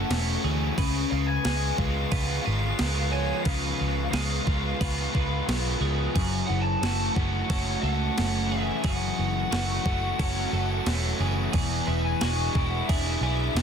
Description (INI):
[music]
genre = rock, shoegaze and dream pop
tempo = 89 BPM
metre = 4/4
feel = straight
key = F# minor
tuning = A4 = 440 Hz
[part]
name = lead guitar through a small cranked amp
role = melody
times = 0.0-13.6 s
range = C#5 to A5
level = -33 LUFS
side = left 2 dB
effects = overdrive, tape echo
[part]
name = icy glass pad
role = sustained chords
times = 0.0-13.6 s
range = A3 to D6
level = -37 LUFS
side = right 2 dB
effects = chorus, built-in reverb
[part]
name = twelve-string electric guitar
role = arpeggios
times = 0.0-13.6 s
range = F#4 to B4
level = -36 LUFS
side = right 10 dB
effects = wide subtle chorus, tape echo
[part]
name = overdriven electric guitar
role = riff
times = 0.0-13.6 s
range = E2 to F#4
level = -31 LUFS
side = left 14 dB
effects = lush chorus
[part]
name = raw garage guitar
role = riff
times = 0.0-13.6 s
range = E2 to F#4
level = -34 LUFS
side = right 14 dB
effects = overdrive, reverse reverb
[part]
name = vintage muted picked electric bass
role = bass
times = 0.0-13.6 s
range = E1 to D2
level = -28 LUFS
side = equal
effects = none
[part]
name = clean 12-bit digital drum machine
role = drums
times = 0.1-13.6 s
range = crash cymbal, kick drum, snare drum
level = -30 LUFS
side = right 1 dB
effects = overdrive
[sound]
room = little or no reverb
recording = dense, heavily limited modern master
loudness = -24 LUFS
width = side -7 dB against mid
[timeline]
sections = 0.0-13.6 A section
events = none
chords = 0.0 F#m7; 0.8 C#7; 6.1 F#m7; 11.5 E7